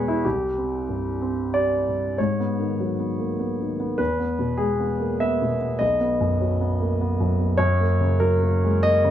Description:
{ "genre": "neoclassical minimalist piano", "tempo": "99 BPM", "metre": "3/4", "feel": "rubato", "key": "G# minor", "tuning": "A4 = 436 Hz", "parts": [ { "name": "warm grand piano", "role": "solo", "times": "0.0-9.1 s", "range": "B1 to E5", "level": "-20 LUFS", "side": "equal", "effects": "none" } ], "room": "light reverb", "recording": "none", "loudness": "-20 LUFS", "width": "side -11 dB against mid", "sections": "0.0-2.2 A section; 2.2-9.1 B section", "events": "none", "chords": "0.2 C5; 2.2 G#m7; 4.0 E; 5.8 B; 7.6 F#" }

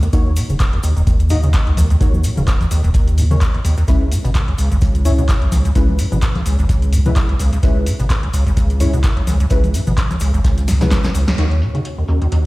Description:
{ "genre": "acid house", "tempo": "128 BPM", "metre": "4/4", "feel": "swing 56% on 16ths", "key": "unclear", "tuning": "A4 = 439 Hz", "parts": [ { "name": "deep acid bass", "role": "riff", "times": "0.0-12.5 s", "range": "Db2 to Db3", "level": "-17 LUFS", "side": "equal", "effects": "overdrive, analog chorus, digital delay" }, { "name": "warm sub bass", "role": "bass", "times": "0.0-11.1 s", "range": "Eb1 to Eb2", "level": "-19 LUFS", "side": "equal", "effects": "sidechain pumping" }, { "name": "electro analog drum machine", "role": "drums", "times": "0.0-12.4 s", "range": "congas, handclaps, hi-hat, snare drum", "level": "-24 LUFS", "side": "equal", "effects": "none" }, { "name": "cabasa", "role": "percussion", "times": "0.0-11.4 s", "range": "none", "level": "-37 LUFS", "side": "left 2 dB", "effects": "none" }, { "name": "deep mellow chord stab", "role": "stabs", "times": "0.1-11.5 s", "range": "Ab3 to Eb5", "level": "-25 LUFS", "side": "left 2 dB", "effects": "ensemble chorus, digital delay" }, { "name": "electronic kick drum", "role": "drums", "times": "0.1-11.0 s", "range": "none", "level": "-17 LUFS", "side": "equal", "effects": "none" }, { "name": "jazz brush drum kit", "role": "drums", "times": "0.1-12.4 s", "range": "hi-hat, snare drum", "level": "-36 LUFS", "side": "equal", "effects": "high-pass filter on hats, low-pass filter on hats, high-pass filter on snare, low-pass filter on snare, high-pass filter on room, low-pass filter on room" }, { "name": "ethereal airy pad", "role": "texture", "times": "11.9-12.5 s", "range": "Db4 to Eb5", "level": "-30 LUFS", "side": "right 1 dB", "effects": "ensemble chorus, built-in reverb, sidechain pumping" } ], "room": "digital ambience", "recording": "played on a big sound system in a bare room, stone room reverb", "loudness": "-13 LUFS", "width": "side -20 dB against mid", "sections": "0.0-11.4 A section; 11.4-12.5 B section", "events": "drum fill 10.7-11.4; band accent 11.3", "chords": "0.0 Ebm7; 3.9 Dbm7; 11.4 Ebm7" }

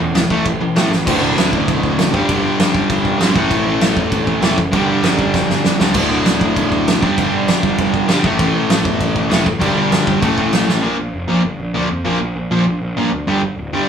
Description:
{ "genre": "punk rock", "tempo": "196 BPM", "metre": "4/4", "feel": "straight", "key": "unclear", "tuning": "A4 = 440 Hz", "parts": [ { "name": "overdriven electric guitar", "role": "riff", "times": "0.0-13.9 s", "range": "D2 to Bb3", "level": "-16 LUFS", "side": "equal", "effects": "none" }, { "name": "fuzz picked electric bass", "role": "bass", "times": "0.0-13.8 s", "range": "D1 to G2", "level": "-22 LUFS", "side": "right 1 dB", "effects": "overdrive" }, { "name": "loose indie drum kit", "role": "drums", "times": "0.1-10.8 s", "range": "crash cymbal, kick drum, snare drum", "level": "-18 LUFS", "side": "right 2 dB", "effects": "none" } ], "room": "light reverb", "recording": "band playing live in one room, small room ambience", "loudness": "-13 LUFS", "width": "side -8 dB against mid", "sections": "0.0-1.1 A section; 1.1-10.8 B section; 10.8-13.9 C section", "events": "drum fill 0.9, 5.3-6.0, 10.7; half time 10.8-13.9", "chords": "0.0 A5; 1.1 D5; 2.1 G5; 3.4 A5; 4.7 G5; 6.0 D5; 7.0 G5; 8.2 A5; 9.6 G5; 10.2 A5; 10.8 Bb5; 13.3 G5" }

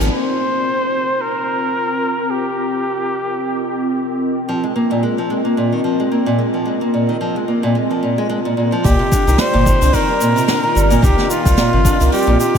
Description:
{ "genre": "folktronica", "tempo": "110 BPM", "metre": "4/4", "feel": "swing 56% on 16ths", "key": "C minor", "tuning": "A4 = 441 Hz", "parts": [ { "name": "warbly tape-like pad", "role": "sustained chords", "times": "0.0-12.6 s", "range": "C4 to Eb5", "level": "-20 LUFS", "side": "equal", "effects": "chorus, built-in reverb" }, { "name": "nylon-string guitar", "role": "arpeggios", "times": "0.0-0.1, 4.5-12.6 s", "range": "Bb2 to Bb3", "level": "-19 LUFS", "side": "equal", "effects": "ping-pong delay" }, { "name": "warm sub bass", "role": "bass", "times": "0.0-0.1, 8.8-12.4 s", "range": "G1 to C2", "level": "-15 LUFS", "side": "equal", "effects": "none" }, { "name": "jazz brush drum kit", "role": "drums", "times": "0.0-12.6 s", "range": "hi-hat, shaker, snare drum", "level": "-24 LUFS", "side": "right 2 dB", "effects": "low-pass filter on hats, low-pass filter on snare, low-pass filter on perc, low-pass filter on room" }, { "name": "clear flugelhorn", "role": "melody", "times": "0.1-4.2, 8.8-12.6 s", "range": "F4 to C5", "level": "-19 LUFS", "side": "left 1 dB", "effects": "ping-pong delay" }, { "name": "electronic kick drum", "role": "drums", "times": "8.8-12.6 s", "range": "none", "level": "-18 LUFS", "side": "equal", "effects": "none" } ], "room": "wet huge ambient reverb, RT60 4.5 s", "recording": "dreamy mix soaked in reverb", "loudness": "-14 LUFS", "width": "side -7 dB against mid", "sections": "0.1-8.8 A section; 8.8-12.6 B section", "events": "none", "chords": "0.1 Cm7; 4.5 Bb7sus4; 8.8 Cm9" }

